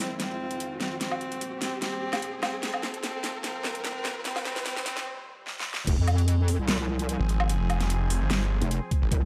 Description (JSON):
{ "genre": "heavy wobble dubstep", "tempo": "148 BPM", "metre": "4/4", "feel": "half-time", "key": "F minor", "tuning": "A4 = 440 Hz", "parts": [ { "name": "rich cello", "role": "melody", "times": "0.0-5.0 s", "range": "C4", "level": "-37 LUFS", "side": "equal", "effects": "digital delay" }, { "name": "evolving wavetable pad", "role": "sustained chords", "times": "0.0-9.3 s", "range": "Db2 to E5", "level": "-42 LUFS", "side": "equal", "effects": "phaser, built-in reverb, vintage 12-bit sampler grit, sidechain pumping" }, { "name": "riser", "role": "sound effects", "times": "0.0-5.1 s", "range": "none", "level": "-41 LUFS", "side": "equal", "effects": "none" }, { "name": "dubstep drum kit", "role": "drums", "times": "0.2-9.2 s", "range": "crash cymbal, hi-hat, snare drum, woodblock", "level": "-34 LUFS", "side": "equal", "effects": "none" }, { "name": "wobble bass", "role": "bass", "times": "5.9-9.3 s", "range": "F1 to F2", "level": "-27 LUFS", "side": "equal", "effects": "chorus, overdrive" }, { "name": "electronic kick drum", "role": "drums", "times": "5.9-6.0, 8.9-9.2 s", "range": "none", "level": "-27 LUFS", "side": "equal", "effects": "none" }, { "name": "snarling distorted saw bass", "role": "bass", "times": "7.2-9.1 s", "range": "F1 to Ab1", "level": "-28 LUFS", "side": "equal", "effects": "distortion, overdrive" } ], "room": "light reverb, digital ambience", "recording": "high-pass filter", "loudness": "-28 LUFS", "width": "mono", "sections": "0.0-5.9 A section; 5.9-9.3 B section", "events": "build-up 0.0-5.9; drum fill 0.0-5.1, 5.5-5.9; riser 0.0-5.1; filter sweep 0.0-5.9; break 5.1-5.9; drop 5.9-9.3", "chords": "0.0 Fm7; 1.0 Eb; 2.6 Db; 4.3 Eb; 5.9 Fm", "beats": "0.20 0.60 | 1.01 1.41 1.82 2.22 | 2.63 3.04 3.44 3.85 | 4.25 4.66 5.06 5.47 | 5.87 6.28 6.68 7.09 | 7.49 7.90 8.30 8.71 | 9.12" }